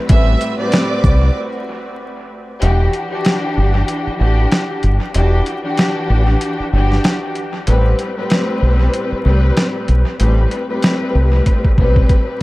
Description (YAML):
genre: hip hop, boom-bap hip-hop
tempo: 95 BPM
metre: 4/4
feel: swing 58% on 16ths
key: E minor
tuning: A4 = 440 Hz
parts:
  - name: warm studio string section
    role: sustained chords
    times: 0.0-2.6 s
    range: A3 to B4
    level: -30 LUFS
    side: right 2 dB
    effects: high-pass filter, low-pass filter
  - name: warm studio violin section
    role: melody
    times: 0.1-1.3 s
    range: D5 to E6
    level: -24 LUFS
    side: right 4 dB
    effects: high-pass filter, low-pass filter, dub echo
  - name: dark studio string section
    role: accompaniment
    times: 0.1-12.4 s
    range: A2 to B4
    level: -19 LUFS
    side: left 1 dB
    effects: cassette tape, high-pass filter, low-pass filter, dub echo
  - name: deep dub fingered electric bass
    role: bass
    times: 0.1-12.0 s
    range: E1 to C2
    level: -13 LUFS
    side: equal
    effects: none
  - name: boom bap sampler-style drum kit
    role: drums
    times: 0.1-12.3 s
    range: hi-hat, kick drum, shaker, snare drum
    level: -16 LUFS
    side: equal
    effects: vintage 12-bit sampler grit, dub echo
room: small room ambience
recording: echo-heavy mix, vinyl crackle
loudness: -13 LUFS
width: side -20 dB against mid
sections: 0.0-2.6 A section; 2.6-12.4 B section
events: break 1.4-2.6; kick muted 2.6-12.4; drum fill 11.5-12.4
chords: 0.0 Am9; 2.6 Em9; 7.7 Am9